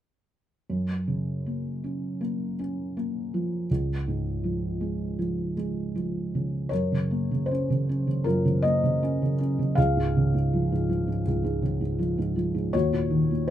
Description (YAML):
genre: classical, lyrical solo piano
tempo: 80 BPM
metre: 4/4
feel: rubato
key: Gb lydian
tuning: A4 = 439 Hz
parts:
  - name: felt-muted upright piano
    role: solo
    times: 0.7-13.5 s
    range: Db2 to F5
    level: -24 LUFS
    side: equal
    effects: none
room: light reverb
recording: minimal, uncompressed stereo recording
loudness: -24 LUFS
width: side -11 dB against mid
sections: 0.7-6.7 A section; 6.7-13.5 B section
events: none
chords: 0.7 Gb; 3.7 Db; 6.7 Gbmaj7; 9.8 Db; 12.7 Ebm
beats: | 0.69 1.46 2.21 2.96 | 3.69 4.43 5.17 5.93 | 6.71 7.49 8.26 9.01 | 9.77 10.53 11.26 12.00 | 12.74 13.49